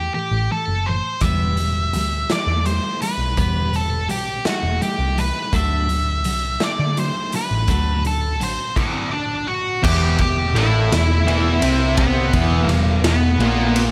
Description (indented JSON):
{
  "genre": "quiet-loud alternative rock",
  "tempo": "56 BPM (dotted quarters)",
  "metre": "6/8",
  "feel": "straight",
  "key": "E minor",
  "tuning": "A4 = 439 Hz",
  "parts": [
    { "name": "octave-fuzz lead guitar", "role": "melody", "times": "0.0-13.8 s", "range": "B3 to G5", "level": "-25 LUFS", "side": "equal", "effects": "distortion, tape echo" },
    { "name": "twelve-string electric guitar", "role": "arpeggios", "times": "0.0-8.7 s", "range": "A2 to B3", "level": "-29 LUFS", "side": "equal", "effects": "subtle chorus, tape echo" },
    { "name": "hollow-body short-scale picked electric bass", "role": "bass", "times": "0.0-13.9 s", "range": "E1 to D3", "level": "-23 LUFS", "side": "equal", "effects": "none" },
    { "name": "raw garage drum kit", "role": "drums", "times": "1.2-13.9 s", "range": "crash cymbal, hi-hat, kick drum, ride cymbal, snare drum", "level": "-26 LUFS", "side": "equal", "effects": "none" },
    { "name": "cranked stack guitar", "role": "riff", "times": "9.8-13.9 s", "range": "E2 to C4", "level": "-27 LUFS", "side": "equal", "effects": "overdrive" },
    { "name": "high-gain distorted guitar", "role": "riff", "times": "9.8-13.9 s", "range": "E2 to C4", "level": "-28 LUFS", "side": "equal", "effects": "distortion" },
    { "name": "thick fuzz guitar", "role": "riff", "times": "9.8-13.9 s", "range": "E2 to C4", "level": "-26 LUFS", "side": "equal", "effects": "distortion" }
  ],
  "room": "studio reverb",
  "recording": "none",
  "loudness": "-19 LUFS",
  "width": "mono",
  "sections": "0.0-9.8 A section; 9.8-13.9 B section",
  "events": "none",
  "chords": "0.0 A5; 1.2 Em; 5.5 D; 9.8 Em"
}